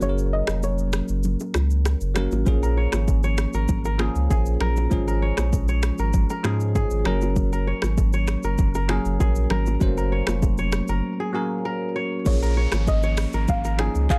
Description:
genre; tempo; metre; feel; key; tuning
afrobeats; 98 BPM; 4/4; straight; Db major; A4 = 442 Hz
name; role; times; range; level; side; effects
soft round pluck; melody; 0.0-1.2, 12.3-14.2 s; Db5 to Ab5; -32 LUFS; equal; chorus, delay
bell-like tine electric piano; accompaniment; 0.0-14.2 s; F3 to C5; -30 LUFS; equal; phaser
warm sub bass; bass; 0.0-14.2 s; F1 to Ab2; -25 LUFS; equal; none
afro-pop drum kit; drums; 0.0-14.2 s; crash cymbal, finger snaps, handclaps, hi-hat, kick drum, rim click, shaker; -26 LUFS; equal; none
congas and bongos; percussion; 0.0-14.2 s; none; -34 LUFS; equal; none
kora; riff; 2.6-14.2 s; Ab4 to Db5; -33 LUFS; equal; delay
downlifter; sound effects; 12.3-14.2 s; none; -42 LUFS; equal; none
room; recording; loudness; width
light reverb; dark, warm production; -23 LUFS; mono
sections
0.0-2.5 A section; 2.5-12.3 B section; 12.3-14.2 C section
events
break 0.0-2.5, 11.0-12.3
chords
0.0 Gb; 2.5 Db/Ab; 7.1 Gb; 12.3 Bbm7

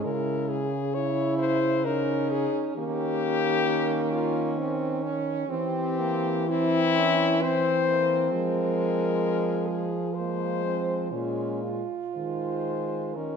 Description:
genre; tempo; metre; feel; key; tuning
classical, lyrical piece for horn quartet; 65 BPM; 3/4; uneven beats, rubato; Ab major; A4 = 440 Hz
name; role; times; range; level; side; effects
warm French horn; melody; 0.0-13.4 s; E4 to Db5; -27 LUFS; left 7 dB; none
warm French horn; second line; 0.0-13.4 s; Ab3 to F4; -30 LUFS; right 6 dB; none
clear French horn; accompaniment; 0.0-13.4 s; Ab3 to Fb4; -32 LUFS; left 2 dB; none
mellow French horn; bass; 0.1-13.4 s; Bb2 to F3; -30 LUFS; right 4 dB; none
room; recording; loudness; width
moderate scoring stage reverb, RT60 2.1 s; none; -24 LUFS; side -6 dB against mid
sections
0.0-13.4 A section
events
none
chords
0.0 Dbm; 2.8 Eb7; 5.5 C7/E; 8.3 Fm; 11.1 Bbm7; 12.1 Ab/Eb

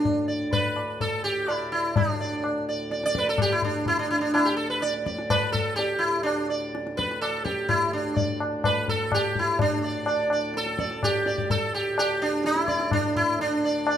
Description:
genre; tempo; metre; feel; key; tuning
indian classical, Hindustani; 126 BPM; 4/4; straight; D raga durga; A4 = 443 Hz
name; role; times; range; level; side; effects
sitar; melody; 0.0-14.0 s; D4 to D5; -24 LUFS; right 1 dB; none
pedal harmonium; drone; 0.0-14.0 s; D2 to A2; -37 LUFS; right 1 dB; none
tabla; percussion; 0.1-14.0 s; none; -28 LUFS; left 3 dB; none
room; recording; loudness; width
moderate recital hall reverb, RT60 1.5 s; minimal, uncompressed stereo recording; -23 LUFS; side -9 dB against mid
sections
0.0-9.6 A section; 9.6-14.0 B section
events
none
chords
none

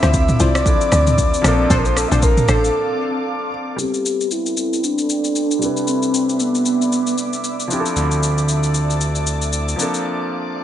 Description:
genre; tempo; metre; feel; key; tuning
amapiano; 115 BPM; 4/4; swing 58% on 16ths; A minor; A4 = 442 Hz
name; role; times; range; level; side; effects
breathy flute-like synth lead; melody; 0.0-7.7 s; B3 to E5; -20 LUFS; equal; chorus, low-pass filter, digital delay
warm concert grand piano; accompaniment; 0.0-10.6 s; C3 to B4; -25 LUFS; equal; low-pass filter
glassy FM pad; sustained chords; 0.0-10.6 s; C4 to D6; -26 LUFS; left 2 dB; ensemble chorus, built-in reverb, sidechain pumping, low-pass filter
punchy chord stab; stabs; 0.0-2.7 s; D4 to C5; -26 LUFS; left 3 dB; chorus, digital delay
woody log drum bass; bass; 0.0-2.7 s; A1 to D2; -18 LUFS; equal; none
deep house drum kit; drums; 0.0-10.0 s; kick drum, rim click, shaker, toms; -21 LUFS; equal; overdrive
fat analog bass; bass; 8.0-9.8 s; D2; -19 LUFS; right 1 dB; none
room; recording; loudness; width
light reverb; nothing above 10.9 kHz; -16 LUFS; side -11 dB against mid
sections
0.0-3.8 A section; 3.8-10.6 B section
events
drop 0.0-3.8; break 2.7-3.8, 10.1-10.6; filter sweep 3.8-10.6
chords
0.0 Dm9; 1.4 Bbmaj9; 3.8 Am9; 5.6 Cmaj9; 7.7 Dm9; 9.8 Bbmaj9

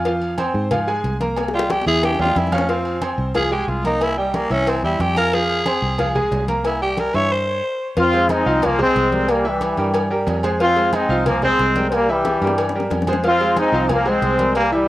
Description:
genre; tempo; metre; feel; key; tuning
latin, salsa; 182 BPM; 4/4; straight; F minor; A4 = 439 Hz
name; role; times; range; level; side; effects
clear grand piano; accompaniment; 0.0-14.9 s; E3 to F6; -22 LUFS; right 1 dB; cassette tape
fingered electric bass; bass; 0.0-14.9 s; C2 to Ab2; -25 LUFS; equal; none
congas; percussion; 0.1-14.9 s; none; -29 LUFS; left 1 dB; none
cowbell and bongos; percussion; 0.1-14.7 s; none; -26 LUFS; left 3 dB; none
agogo bells and timbales; percussion; 0.2-14.7 s; none; -29 LUFS; right 1 dB; none
growling tenor saxophone; melody; 1.5-7.9 s; G3 to Db5; -22 LUFS; equal; cassette tape, analog delay
brilliant trombone section; melody; 8.0-14.9 s; E3 to F4; -17 LUFS; left 1 dB; cassette tape
room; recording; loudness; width
moderate spring reverb, RT60 1.2 s, small room ambience; home recording on cassette; -16 LUFS; side -15 dB against mid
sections
0.0-8.0 A section; 8.0-14.9 B section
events
tenor saxophone solo 0.0-8.0; drum fill 1.4-2.7, 12.3-13.2; stop 7.3-8.0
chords
0.1 Fm; 1.4 C7; 2.7 Fm; 4.0 C7; 5.3 Fm; 6.6 C7; 8.0 Fm7; 9.3 C7; 10.6 Fm7; 11.9 C7; 13.2 Fm7

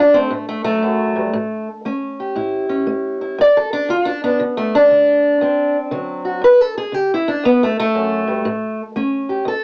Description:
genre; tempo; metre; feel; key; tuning
acoustic country blues, solo or duo; 118 BPM; 4/4; swing 66% on 8ths; D major; A4 = 437 Hz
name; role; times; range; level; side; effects
fingerpicked steel-string acoustic guitar; solo; 0.0-9.6 s; D2 to D5; -14 LUFS; equal; cassette tape
room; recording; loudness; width
moderate booth ambience, RT60 0.3 s; home recording on cassette, small speaker sound; -14 LUFS; side -38 dB against mid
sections
0.0-9.5 A section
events
steel-string acoustic guitar solo 0.0-9.5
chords
0.0 D7; 1.3 A7; 3.4 G; 5.4 D7; 6.4 G5; 7.4 D; 8.5 A7

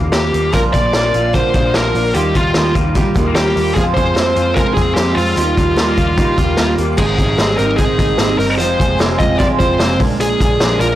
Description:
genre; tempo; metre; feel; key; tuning
jangly indie pop; 149 BPM; 4/4; straight; unclear; A4 = 439 Hz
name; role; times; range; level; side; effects
electric guitar through a small old amp; arpeggios; 0.0-11.0 s; Ab2 to F4; -21 LUFS; left 3 dB; analog chorus, plate reverb
vintage muted picked electric bass; bass; 0.0-11.0 s; F1 to F2; -20 LUFS; equal; tube saturation
high-gain lead guitar; melody; 0.1-11.0 s; F4 to Eb5; -17 LUFS; equal; distortion
raw garage drum kit; drums; 0.1-10.9 s; crash cymbal, hi-hat, kick drum, snare drum; -17 LUFS; equal; none
picked twelve-string acoustic guitar; accompaniment; 0.5-11.0 s; F2 to F4; -20 LUFS; right 4 dB; none
room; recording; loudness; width
light reverb; blown-out, overdriven recording, overdrive; -12 LUFS; side -13 dB against mid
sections
0.0-7.0 A section; 7.0-11.0 B section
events
none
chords
0.0 Ebadd9; 0.5 Bb; 2.1 Ebadd9; 3.8 Fm; 5.4 Ebadd9; 7.0 Abmaj7; 8.6 Fm; 10.0 Bb7

